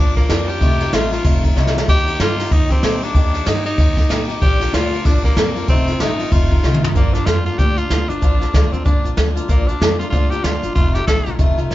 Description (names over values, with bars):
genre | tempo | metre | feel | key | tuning
rockabilly | 189 BPM | 4/4 | swing 60% on 8ths | Bb major | A4 = 439 Hz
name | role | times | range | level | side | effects
raspy tenor saxophone | melody | 0.0-11.4 s | Bb3 to A4 | -23 LUFS | equal | none
picked swing-style acoustic guitar | accompaniment | 0.0-11.7 s | F2 to G4 | -24 LUFS | left 3 dB | none
upright bass | bass | 0.0-11.7 s | F1 to Bb2 | -21 LUFS | equal | none
jazz brush drum kit | drums | 0.2-11.7 s | hi-hat, kick drum, ride cymbal, snare drum, splash cymbal, toms | -16 LUFS | equal | none
room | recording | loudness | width
light reverb | band playing live in one room, nothing above 7.6 kHz | -14 LUFS | side -15 dB against mid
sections
0.0-7.0 A section; 7.0-11.7 B section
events
drum fill 1.6-1.9, 6.6-7.0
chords
0.0 Bb; 0.6 F7; 1.9 Eb; 4.4 Bb; 5.7 F7; 7.0 Bb; 10.8 F7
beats
0.30 | 0.61 0.93 1.25 1.57 | 1.88 2.20 2.52 2.83 | 3.15 3.47 3.78 4.10 | 4.42 4.73 5.05 5.37 | 5.68 6.00 6.32 6.63 | 6.95 7.27 7.58 7.90 | 8.22 8.54 8.85 9.17 | 9.49 9.81 10.12 10.44 | 10.76 11.08 11.39 11.71